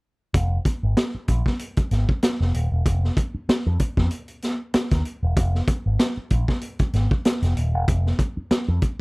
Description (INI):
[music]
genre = funk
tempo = 96 BPM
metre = 4/4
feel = swing 56% on 16ths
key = unclear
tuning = A4 = 439 Hz
[part]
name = picked electric bass with an envelope filter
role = bass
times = 0.3-8.8 s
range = Eb1 to F2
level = -21 LUFS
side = equal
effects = none
[part]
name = raw garage drum kit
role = drums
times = 0.3-9.0 s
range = hi-hat, kick drum, snare drum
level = -22 LUFS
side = equal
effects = none
[sound]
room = little or no reverb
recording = dry, close 1970s-style studio recording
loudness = -20 LUFS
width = side -30 dB against mid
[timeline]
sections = 0.3-9.0 A section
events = none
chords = none